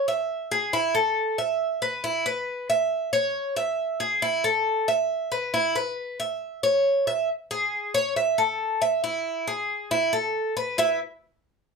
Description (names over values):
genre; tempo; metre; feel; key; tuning
latin; 137 BPM; 4/4; straight; E major; A4 = 440 Hz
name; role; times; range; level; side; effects
Cuban tres; solo; 0.0-11.0 s; E4 to E5; -23 LUFS; equal; none
room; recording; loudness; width
light reverb; none; -23 LUFS; side -4 dB against mid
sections
0.0-7.3 A section; 7.3-10.8 B section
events
none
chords
0.3 E; 1.2 Asus2; 2.0 E5; 2.9 C#m; 3.8 E; 4.7 Asus2; 5.5 E5; 6.4 C#m; 7.3 G#sus4; 8.2 A5; 9.0 E; 9.9 A5; 10.8 E5